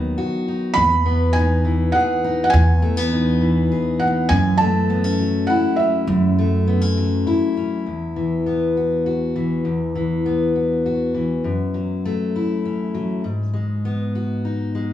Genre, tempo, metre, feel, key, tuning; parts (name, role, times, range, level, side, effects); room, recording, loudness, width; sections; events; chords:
acoustic folk duo or small band; 101 BPM; 3/4; straight; E major; A4 = 440 Hz
fingerpicked steel-string acoustic guitar; accompaniment; 0.0-14.9 s; E2 to G#4; -20 LUFS; left 2 dB
upright bass; bass; 0.0-7.2 s; D#2 to F#2; -18 LUFS; right 1 dB
felt-muted upright piano; melody; 0.7-6.9 s; E5 to B5; -21 LUFS; right 3 dB
moderate large studio reverb, RT60 1.3 s; small room reverb; -17 LUFS; side -11 dB against mid
0.0-7.9 A section; 7.9-14.9 B section
0.0 B/D#; 0.8 Emaj7; 4.3 F#m7; 7.9 Esus2; 11.5 F#m; 13.2 G#m7